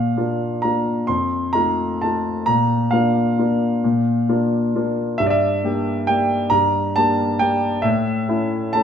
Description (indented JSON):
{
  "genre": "classical, piano waltz",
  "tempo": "133 BPM",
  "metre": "3/4",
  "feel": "uneven beats, rubato",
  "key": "unclear",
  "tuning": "A4 = 444 Hz",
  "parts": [
    { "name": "warm concert grand piano", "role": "solo", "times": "0.0-8.8 s", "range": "F2 to C6", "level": "-17 LUFS", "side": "equal", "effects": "none" }
  ],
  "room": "wet stone room reverb, RT60 1.2 s",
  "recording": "none",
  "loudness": "-17 LUFS",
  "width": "side -8 dB against mid",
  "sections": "0.0-8.8 A section",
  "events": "none",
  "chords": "0.0 Bb; 1.1 F7; 2.5 Bb; 5.2 Em7b5/G; 7.9 A"
}